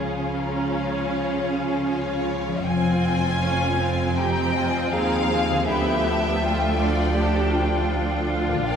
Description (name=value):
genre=cinematic, emotional film score for orchestra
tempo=80 BPM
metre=4/4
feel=rubato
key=unclear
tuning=A4 = 442 Hz
part: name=rich studio violin section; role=melody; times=0.0-8.8 s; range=Eb5 to Ab5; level=-34 LUFS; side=left 3 dB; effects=none
part: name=large flute ensemble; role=second line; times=0.0-8.8 s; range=F5 to B5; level=-31 LUFS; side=left 1 dB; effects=none
part: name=rich studio violin section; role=second line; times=0.0-8.8 s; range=Ab4 to Ab5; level=-28 LUFS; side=left 2 dB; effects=none
part: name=clear studio viola section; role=accompaniment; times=0.0-8.8 s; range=A3 to Ab4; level=-27 LUFS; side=right 1 dB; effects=none
part: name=mellow French horn section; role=sustained chords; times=0.0-8.8 s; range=F3 to C5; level=-30 LUFS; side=left 1 dB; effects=none
part: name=concert harp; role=arpeggios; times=0.0-8.8 s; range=Bb2 to Bb4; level=-30 LUFS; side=left 3 dB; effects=none
part: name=bright studio cello section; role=bass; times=0.0-8.8 s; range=D2 to Db3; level=-29 LUFS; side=right 2 dB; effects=none
part: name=rich studio double bass section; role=bass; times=0.0-8.8 s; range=F1 to Eb2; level=-28 LUFS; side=right 2 dB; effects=none
room=wet scoring stage reverb, RT60 2.0 s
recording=heard from further back in the room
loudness=-20 LUFS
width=side -7 dB against mid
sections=0.0-8.8 A section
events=none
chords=0.0 Db; 2.7 Fm; 5.7 Dm